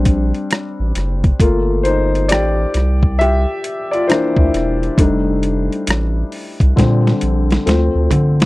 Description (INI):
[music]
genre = R&B, neo-soul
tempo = 67 BPM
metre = 4/4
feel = swing 63% on 16ths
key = unclear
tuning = A4 = 440 Hz
[part]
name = warm grand piano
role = accompaniment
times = 0.0-8.5 s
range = D3 to E5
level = -18 LUFS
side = left 2 dB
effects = none
[part]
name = round analog bass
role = bass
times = 0.0-8.5 s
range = E1 to D3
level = -16 LUFS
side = equal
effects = none
[part]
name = boom bap sampler-style drum kit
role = drums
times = 0.1-8.5 s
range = hi-hat, kick drum, rim click, snare drum, toms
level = -16 LUFS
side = equal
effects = none
[sound]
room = little or no reverb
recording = dry, close 1970s-style studio recording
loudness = -13 LUFS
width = side -20 dB against mid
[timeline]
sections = 0.0-8.5 A section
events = grand piano solo 0.0-8.5; drum fill 6.8-8.5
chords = 0.0 Bb69; 1.4 Gm9; 2.7 C7; 5.0 F13; 6.8 Bb69; 7.7 Dm7